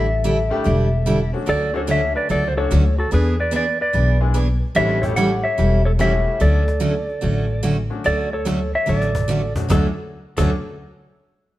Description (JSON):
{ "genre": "country, western swing", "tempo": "146 BPM", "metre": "4/4", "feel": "swing 65% on 8ths", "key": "D major", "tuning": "A4 = 437 Hz", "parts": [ { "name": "clean lap steel guitar", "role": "melody", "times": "0.0-10.5 s", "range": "F#4 to F#5", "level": "-22 LUFS", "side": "equal", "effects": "none" }, { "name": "picked steel-string acoustic guitar", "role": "accompaniment", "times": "0.0-10.5 s", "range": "D3 to A4", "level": "-22 LUFS", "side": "right 2 dB", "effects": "none" }, { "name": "upright bass", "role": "bass", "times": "0.0-10.5 s", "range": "E1 to E2", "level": "-20 LUFS", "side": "equal", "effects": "none" }, { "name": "cajon", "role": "drums", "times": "0.3-10.4 s", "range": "none", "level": "-26 LUFS", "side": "left 1 dB", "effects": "none" }, { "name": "bright upright piano", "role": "accompaniment", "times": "0.5-10.5 s", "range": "F#3 to G#4", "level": "-28 LUFS", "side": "left 3 dB", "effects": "none" } ], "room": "moderate stone room reverb, RT60 1.3 s", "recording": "band playing live in one room", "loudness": "-17 LUFS", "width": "side -15 dB against mid", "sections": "0.0-8.1 A section; 8.1-9.7 B section; 9.7-11.3 C section", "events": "drum fill 8.9-9.3", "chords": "0.0 A7sus4; 1.5 Dmaj7; 3.1 E7; 4.8 A7; 6.4 Dmaj7", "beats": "0.25 0.66 1.07 | 1.48 1.89 2.30 2.71 | 3.12 3.53 3.94 4.35 | 4.76 5.17 5.59 6.00 | 6.41 6.82 7.23 7.64 | 8.05 8.47 8.88 9.29 | 9.70 10.11" }